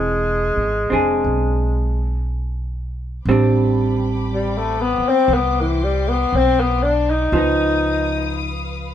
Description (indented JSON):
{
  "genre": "jazz ballad",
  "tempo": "59 BPM",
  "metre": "4/4",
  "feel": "swing 69% on 8ths",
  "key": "A minor from 3.3 s",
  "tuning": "A4 = 440 Hz",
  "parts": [
    { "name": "breathy tenor saxophone", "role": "melody", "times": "0.0-8.7 s", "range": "E3 to D#4", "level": "-19 LUFS", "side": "left 3 dB", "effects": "none" },
    { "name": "vintage hollow-body jazz guitar", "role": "accompaniment", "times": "0.0-8.9 s", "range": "E3 to G#4", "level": "-21 LUFS", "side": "right 2 dB", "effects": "none" },
    { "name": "upright bass", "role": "bass", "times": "0.0-8.9 s", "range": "E1 to C#2", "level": "-22 LUFS", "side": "right 1 dB", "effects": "none" },
    { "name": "warm studio string section", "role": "sustained chords", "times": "3.3-8.9 s", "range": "B4 to D#6", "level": "-31 LUFS", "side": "left 2 dB", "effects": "none" }
  ],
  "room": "moderate large studio reverb, RT60 0.8 s",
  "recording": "band playing live in one room",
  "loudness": "-16 LUFS",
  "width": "side -10 dB against mid",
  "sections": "0.0-3.3 A section; 3.3-8.9 B section",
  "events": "tenor saxophone solo 3.3-8.9",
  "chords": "0.0 E7b13; 3.3 Am11; 7.3 C#9",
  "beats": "0.23 1.25 2.26 | 3.28 4.29 5.30 6.32 | 7.33 8.34"
}